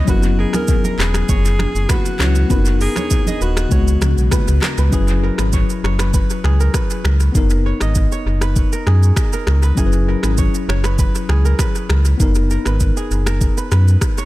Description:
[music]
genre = afrobeats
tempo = 99 BPM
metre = 4/4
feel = straight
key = F# mixolydian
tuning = A4 = 440 Hz
[part]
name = tine electric piano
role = accompaniment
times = 0.0-14.3 s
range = C#3 to B4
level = -23 LUFS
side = left 4 dB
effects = medium stereo tremolo, dub echo
[part]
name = kora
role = riff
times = 0.0-14.3 s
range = G#4 to D#5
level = -27 LUFS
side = right 5 dB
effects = dub echo
[part]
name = sub bass with octave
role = bass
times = 0.0-14.0 s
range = D#1 to F#2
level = -15 LUFS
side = equal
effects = none
[part]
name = breathy alto saxophone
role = melody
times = 0.1-4.3 s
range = F#4 to A#4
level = -26 LUFS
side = equal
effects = dub echo
[part]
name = afro-pop drum kit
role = drums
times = 0.1-14.3 s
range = finger snaps, handclaps, hi-hat, kick drum, rim click, shaker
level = -19 LUFS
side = equal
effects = dub echo
[part]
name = congas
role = percussion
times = 0.1-4.8 s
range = none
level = -28 LUFS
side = right 4 dB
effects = dub echo
[sound]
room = small room ambience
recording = echo-heavy mix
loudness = -14 LUFS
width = side -17 dB against mid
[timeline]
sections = 0.0-4.9 A section; 4.9-14.3 B section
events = none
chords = 0.1 F#7sus4; 2.5 Bmaj7/F#; 3.7 C#7sus4; 4.9 F#7sus4; 7.3 Bmaj7/F#; 9.8 F#7sus4; 12.2 Bmaj7/F#

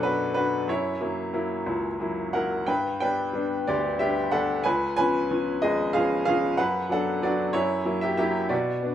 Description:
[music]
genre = classical, lyrical solo piano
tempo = 62 BPM (dotted quarters)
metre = 6/8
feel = rubato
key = unclear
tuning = A4 = 440 Hz
[part]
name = bright upright piano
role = solo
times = 0.0-8.9 s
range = G#1 to G#5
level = -23 LUFS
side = equal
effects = none
[sound]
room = moderate recital hall reverb, RT60 1.5 s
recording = minimal, uncompressed stereo recording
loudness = -23 LUFS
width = side -10 dB against mid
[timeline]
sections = 0.0-8.9 A section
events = none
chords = 0.0 Bm; 0.7 F#7; 2.7 G; 4.6 C#7; 6.6 Bm/F#; 7.5 F#7

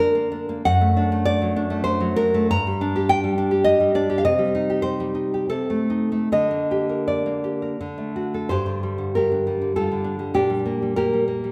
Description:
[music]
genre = romantic piece for solo classical guitar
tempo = 71-105 BPM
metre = 3/4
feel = rubato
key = G minor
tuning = A4 = 438 Hz
[part]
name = nylon-string guitar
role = solo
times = 0.0-11.5 s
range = F#2 to Bb5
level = -22 LUFS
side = equal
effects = none
[sound]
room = wet recital hall reverb, RT60 1.4 s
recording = recorded in a church or concert hall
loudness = -22 LUFS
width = mono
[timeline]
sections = 0.0-8.5 A section; 8.5-11.5 B section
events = none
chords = 0.0 Bb/D; 0.7 D/F#; 2.5 Gm; 4.2 Cm; 5.5 Adim/C; 6.3 Gm/D; 7.8 D; 8.5 Gm; 10.4 Gm/Bb

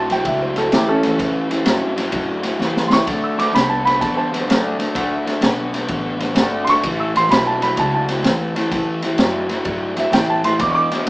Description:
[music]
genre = electric blues shuffle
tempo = 128 BPM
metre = 4/4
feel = swing 66% on 8ths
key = A mixolydian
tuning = A4 = 440 Hz
[part]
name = warm upright piano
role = accompaniment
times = 0.0-11.0 s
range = C#4 to E6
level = -19 LUFS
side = right 1 dB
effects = none
[part]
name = raw garage guitar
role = riff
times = 0.0-11.1 s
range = E2 to B3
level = -21 LUFS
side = left 1 dB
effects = overdrive
[part]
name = upright bass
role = bass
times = 0.0-11.1 s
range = G1 to A2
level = -30 LUFS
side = equal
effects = none
[part]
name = crunchy breakbeat drum kit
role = drums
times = 0.1-11.1 s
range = kick drum, ride cymbal, snare drum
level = -20 LUFS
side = equal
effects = none
[sound]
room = moderate large studio reverb, RT60 0.9 s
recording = band playing live in one room, small speaker sound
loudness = -16 LUFS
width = side -21 dB against mid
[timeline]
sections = 0.0-11.1 A section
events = drum fill 2.6-3.1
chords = 0.0 A7; 3.1 D7(no3); 6.8 A7

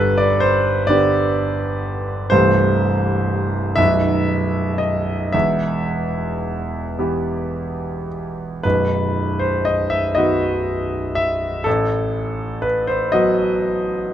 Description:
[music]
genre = classical, romantic nocturne for solo piano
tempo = 35-44 BPM (dotted quarters)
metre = 12/8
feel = rubato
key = unclear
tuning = A4 = 440 Hz
[part]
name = clear concert grand piano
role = solo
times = 0.0-14.1 s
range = B0 to E5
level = -17 LUFS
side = equal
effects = none
[sound]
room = light reverb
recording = close, detailed microphones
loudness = -17 LUFS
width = side -10 dB against mid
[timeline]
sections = 0.0-14.1 A section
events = none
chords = 0.0 G; 2.3 C6; 3.8 B; 5.3 Em; 8.6 B; 11.7 B7/A

